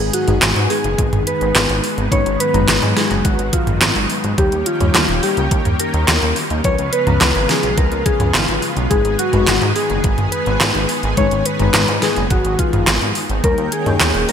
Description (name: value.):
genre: synthwave.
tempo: 106 BPM.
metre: 4/4.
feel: straight.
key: G# dorian.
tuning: A4 = 439 Hz.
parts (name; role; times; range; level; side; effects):
soft octave-layered synth lead; melody; 0.0-14.3 s; E#4 to C#5; -22 LUFS; left 1 dB; chorus, ping-pong delay.
soft synth bell; second line; 0.0-14.3 s; E#4 to C#5; -26 LUFS; equal; chorus.
analog string pad; sustained chords; 0.0-14.3 s; C#3 to G5; -23 LUFS; equal; ensemble chorus, sidechain pumping.
FM electric piano with soft pad layer; stabs; 0.0-14.3 s; G#2 to A#5; -25 LUFS; left 5 dB; chorus, tremolo.
chorused synth bass; bass; 0.0-14.3 s; D#1 to G#2; -20 LUFS; equal; sidechain pumping.
pop drum kit; drums; 0.1-14.3 s; handclaps, hi-hat, snare drum, toms; -18 LUFS; right 1 dB; overdrive, gated reverb.
electronic kick drum; drums; 1.0-13.6 s; none; -18 LUFS; equal; overdrive.
room: moderate lush hall reverb, RT60 2.5 s.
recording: bright 1980s-style digital production.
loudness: -14 LUFS.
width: side -8 dB against mid.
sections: 0.0-14.3 A section.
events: none.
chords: 0.0 G#m; 4.4 D#7; 6.6 C#7; 8.9 G#m; 13.4 D#7.